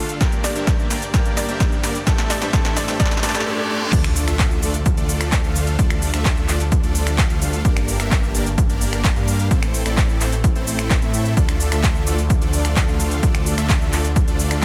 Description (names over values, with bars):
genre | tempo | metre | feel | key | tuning
EDM, festival progressive house | 129 BPM | 4/4 | straight | D minor | A4 = 440 Hz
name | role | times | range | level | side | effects
bright grand piano | accompaniment | 0.0-4.0 s | G2 to C5 | -32 LUFS | equal | sidechain pumping, digital delay
rich studio string section | sustained chords | 0.0-14.6 s | D2 to E5 | -35 LUFS | equal | none
supersaw chords | riff | 0.0-14.6 s | A3 to F5 | -28 LUFS | equal | sidechain pumping, digital delay
riser, reverse cymbal and impact | sound effects | 1.9-5.8 s | none | -33 LUFS | equal | none
big-room dance drum kit | drums | 0.1-14.6 s | crash cymbal, finger snaps, handclaps, hi-hat, shaker, snare drum, toms | -27 LUFS | equal | overdrive, high-pass filter on snare, high-pass filter on hats, high-pass filter on perc, high-pass filter on toms, high-pass filter on cymbals, high-pass filter on room
electronic kick drum | drums | 0.2-14.6 s | none | -21 LUFS | equal | overdrive
hollow square pluck | melody | 0.4-3.4 s | D5 | -33 LUFS | equal | chorus, digital delay
detuned saw bass | bass | 3.9-14.6 s | G1 to A2 | -24 LUFS | equal | chorus, sidechain pumping
room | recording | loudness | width
light reverb | none | -19 LUFS | mono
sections
0.0-3.9 A section; 3.9-14.6 B section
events
build-up 0.0-3.9; drum fill 0.0-3.5, 3.5-3.9; reverse cymbal 3.1-3.9; drop 3.9-14.6; impact 3.9-5.8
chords
0.2 Gm; 2.1 Am; 3.9 Dm; 7.6 Gm; 9.5 Am; 11.4 Dm